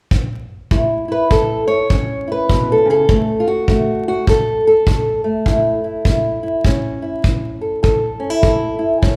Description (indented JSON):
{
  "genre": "acoustic country blues, solo or duo",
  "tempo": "101 BPM",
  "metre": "4/4",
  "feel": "swing 61% on 8ths",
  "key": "A major",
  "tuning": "A4 = 440 Hz",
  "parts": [
    { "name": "kick drum", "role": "drums", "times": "0.1-9.2 s", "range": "none", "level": "-20 LUFS", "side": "equal", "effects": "none" },
    { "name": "fingerpicked old ladder-braced acoustic guitar", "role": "melody", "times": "0.7-9.2 s", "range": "A2 to C#5", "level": "-18 LUFS", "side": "equal", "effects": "none" }
  ],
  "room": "moderate large studio reverb, RT60 1.2 s",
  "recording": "band playing live in one room, vinyl crackle",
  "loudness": "-16 LUFS",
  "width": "mono",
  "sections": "0.7-9.2 A section",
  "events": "none",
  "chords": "0.0 N.C.; 0.7 A; 3.1 D; 5.5 A"
}